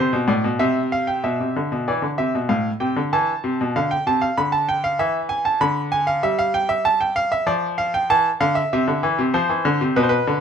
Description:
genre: classical, baroque-style two-part invention for grand piano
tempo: 96 BPM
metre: 4/4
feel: straight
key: unclear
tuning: A4 = 435 Hz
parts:
  - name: bright grand piano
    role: solo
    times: 0.0-10.4 s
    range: A2 to B5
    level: -18 LUFS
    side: equal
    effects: none
room: light reverb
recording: minimal, uncompressed stereo recording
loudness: -18 LUFS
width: side -7 dB against mid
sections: 0.0-1.2 A section; 1.2-10.4 B section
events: none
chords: 0.0 Am; 1.2 Cmaj7/B; 2.5 F/A; 3.7 Bm7b5 (rootless); 5.0 E; 6.2 Em/G; 7.5 Dm/F; 8.7 C

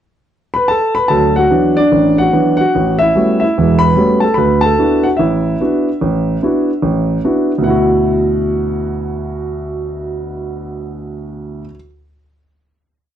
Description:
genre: solo jazz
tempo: 147 BPM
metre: 4/4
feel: swing 65% on 8ths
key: D major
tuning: A4 = 440 Hz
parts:
  - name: warm grand piano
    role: solo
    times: 0.5-11.7 s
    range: E1 to B5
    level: -12 LUFS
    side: equal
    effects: slapback echo
room: light reverb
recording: dry, close 1970s-style studio recording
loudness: -12 LUFS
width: side -10 dB against mid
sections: 0.0-1.1 pickup bar; 1.1-7.6 A section; 7.6-10.9 final chord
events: none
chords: 0.0 Asus2; 1.1 D69; 2.7 A13; 4.4 D69

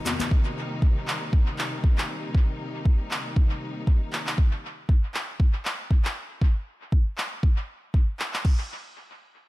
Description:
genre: afro house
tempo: 118 BPM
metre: 4/4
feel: swing 56% on 16ths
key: C minor pentatonic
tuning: A4 = 440 Hz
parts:
  - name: bright studio string section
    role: sustained chords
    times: 0.0-4.3 s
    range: C3 to Eb4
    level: -34 LUFS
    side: left 1 dB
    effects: sidechain pumping
  - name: afro-pop drum kit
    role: drums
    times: 0.1-8.4 s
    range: handclaps, hi-hat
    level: -32 LUFS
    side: equal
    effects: tape echo
  - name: deep house drum kit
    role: drums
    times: 0.3-8.6 s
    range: crash cymbal, kick drum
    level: -20 LUFS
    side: equal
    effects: none
room: studio reverb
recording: echo-heavy mix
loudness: -23 LUFS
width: side -19 dB against mid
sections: 0.0-8.4 A section; 8.4-9.5 B section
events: none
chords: 0.0 Cm7; 8.4 N.C.

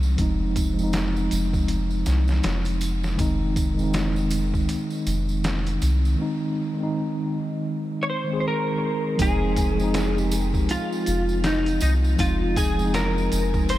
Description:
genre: trip hop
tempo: 80 BPM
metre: 4/4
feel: swing 60% on 16ths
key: F minor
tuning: A4 = 440 Hz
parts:
  - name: mellow tine electric piano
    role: accompaniment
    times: 0.0-13.8 s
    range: Eb3 to Ab4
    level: -26 LUFS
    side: equal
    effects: medium stereo tremolo, tape echo
  - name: soft dub sub bass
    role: bass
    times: 0.0-13.8 s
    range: F1 to C2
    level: -24 LUFS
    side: equal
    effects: none
  - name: tambourine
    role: percussion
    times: 0.0-13.8 s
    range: none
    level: -38 LUFS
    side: right 3 dB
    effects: none
  - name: trip hop sampler-style drum kit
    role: drums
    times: 0.2-13.8 s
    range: hi-hat, kick drum, snare drum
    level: -28 LUFS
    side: equal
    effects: none
  - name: clean electric guitar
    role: melody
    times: 8.0-13.8 s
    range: Eb4 to Db5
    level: -26 LUFS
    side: equal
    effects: ensemble chorus, tape echo
room: light reverb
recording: none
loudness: -21 LUFS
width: side -14 dB against mid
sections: 0.0-9.2 A section; 9.2-13.8 B section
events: break 6.2-9.2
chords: 0.0 Fm7

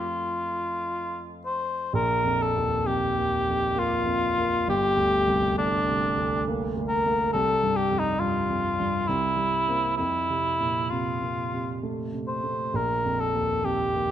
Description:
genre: classical, romantic duo for cor anglais and grand piano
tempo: 67 BPM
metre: 3/4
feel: uneven beats, rubato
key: Bb major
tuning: A4 = 440 Hz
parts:
  - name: mellow cor anglais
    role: melody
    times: 0.0-14.1 s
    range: D4 to C5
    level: -25 LUFS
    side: left 1 dB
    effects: none
  - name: warm grand piano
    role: accompaniment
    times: 0.0-14.1 s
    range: G1 to C4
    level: -28 LUFS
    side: right 2 dB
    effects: none
room: moderate recital hall reverb, RT60 1.5 s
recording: none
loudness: -23 LUFS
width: side -10 dB against mid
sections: 0.0-1.9 A section; 1.9-14.1 B section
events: none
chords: 0.0 F; 1.9 Bb5; 4.7 Gm; 7.3 C5; 9.1 C7; 10.0 F; 12.7 Bb5

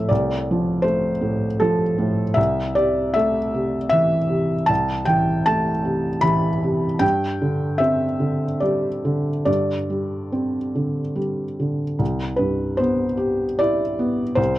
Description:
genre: neoclassical minimalist piano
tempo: 70-80 BPM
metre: 3/4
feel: rubato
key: C major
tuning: A4 = 439 Hz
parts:
  - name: felt-muted upright piano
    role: solo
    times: 0.0-14.6 s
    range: C2 to B5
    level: -19 LUFS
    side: equal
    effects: none
room: little or no reverb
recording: dry, close 1970s-style studio recording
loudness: -19 LUFS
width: side -15 dB against mid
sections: 0.0-12.0 A section; 12.0-14.6 B section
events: none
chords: 0.0 F/C; 2.4 Amadd9/C; 7.0 Gsus4; 12.0 Cmaj7

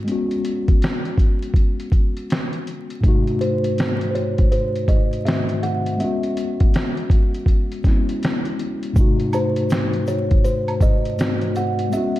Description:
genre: lo-fi hip hop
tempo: 81 BPM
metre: 4/4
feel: swing 64% on 16ths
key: unclear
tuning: A4 = 435 Hz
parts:
  - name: mellow tine electric piano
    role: accompaniment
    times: 0.0-12.2 s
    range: G#2 to F#4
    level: -23 LUFS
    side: left 2 dB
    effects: medium stereo tremolo, cassette tape, low-pass filter
  - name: dusty soul sampler-style drum kit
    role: drums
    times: 0.1-12.2 s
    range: hi-hat, kick drum, snare drum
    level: -18 LUFS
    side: equal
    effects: none
  - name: kalimba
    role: melody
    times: 3.4-12.2 s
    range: B#4 to F#5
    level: -25 LUFS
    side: right 2 dB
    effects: low-pass filter
  - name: tube shaker and woodblock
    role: percussion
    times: 9.0-12.1 s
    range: none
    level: -35 LUFS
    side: right 4 dB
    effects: none
room: light reverb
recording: vinyl crackle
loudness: -17 LUFS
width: side -15 dB against mid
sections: 0.0-12.2 A section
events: break 0.0-3.0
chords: 0.1 F#sus24/G#; 3.0 G#7b9; 6.0 E6/G#; 9.0 G#7b9

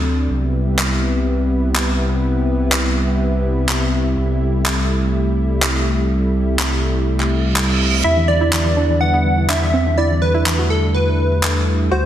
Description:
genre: progressive house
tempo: 124 BPM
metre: 4/4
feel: straight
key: E minor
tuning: A4 = 440 Hz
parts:
  - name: lush unison pad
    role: sustained chords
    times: 0.0-12.1 s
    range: C3 to E4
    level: -20 LUFS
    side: equal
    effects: chorus
  - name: saturated sub bass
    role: bass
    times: 0.0-12.1 s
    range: C2 to E2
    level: -19 LUFS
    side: equal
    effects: none
  - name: electronic handclaps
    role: drums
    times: 0.8-11.5 s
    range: none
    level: -22 LUFS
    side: equal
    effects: none
  - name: reverse cymbal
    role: sound effects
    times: 7.3-8.0 s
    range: none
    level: -23 LUFS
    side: right 6 dB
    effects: none
  - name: plucky unison lead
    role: melody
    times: 8.0-12.1 s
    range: A4 to F#5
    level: -19 LUFS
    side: equal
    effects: vintage 12-bit sampler grit, tape echo
  - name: soft round pluck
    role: arpeggios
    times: 8.0-12.0 s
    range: E3 to F#4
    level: -22 LUFS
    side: right 1 dB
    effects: chorus, tape echo
room: moderate lush hall reverb, RT60 1.7 s, digital ambience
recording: dense, heavily limited modern master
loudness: -15 LUFS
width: side -11 dB against mid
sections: 0.0-12.1 A section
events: reverse cymbal 7.3-8.0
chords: 0.3 Cmaj7; 4.2 Am7/C; 8.0 Em7

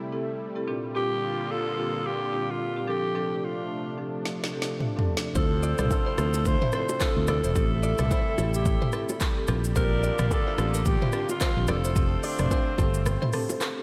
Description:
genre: afrobeats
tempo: 109 BPM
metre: 4/4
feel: swing 58% on 16ths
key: unclear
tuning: A4 = 442 Hz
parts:
  - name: warm analog pad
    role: sustained chords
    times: 0.0-13.8 s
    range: C3 to F4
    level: -38 LUFS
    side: equal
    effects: chorus
  - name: marimba with medium mallets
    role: accompaniment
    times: 0.1-13.8 s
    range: Bb2 to A4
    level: -36 LUFS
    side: equal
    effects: none
  - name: breathy alto saxophone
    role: melody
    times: 1.0-12.8 s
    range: D4 to C5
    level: -33 LUFS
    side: equal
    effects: diffuse ambient delay
  - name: deep house drum kit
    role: drums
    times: 4.3-13.8 s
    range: handclaps, hi-hat, kick drum, rim click, shaker, snare drum, toms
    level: -30 LUFS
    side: equal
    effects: none
  - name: warm horn section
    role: second line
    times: 5.4-13.8 s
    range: A3 to E5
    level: -38 LUFS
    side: equal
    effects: diffuse ambient delay
  - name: direct-recorded clean electric guitar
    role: riff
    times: 5.4-13.4 s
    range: Bb3 to D5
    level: -40 LUFS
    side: equal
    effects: subtle chorus, diffuse ambient delay
  - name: fingered electric bass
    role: bass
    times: 5.4-13.2 s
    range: E1 to D2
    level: -29 LUFS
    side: equal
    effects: none
  - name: congas and bongos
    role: percussion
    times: 5.4-13.8 s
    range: none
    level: -39 LUFS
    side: equal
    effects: none
room: moderate lush hall reverb, RT60 2.0 s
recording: dreamy mix soaked in reverb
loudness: -26 LUFS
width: mono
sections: 0.0-13.8 A section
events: drum fill 4.3-5.4; break 13.1-13.8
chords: 0.0 Am7; 0.7 Bb6; 2.9 F6; 5.4 Dm7; 7.6 Am7; 9.5 Bb6; 11.7 F6

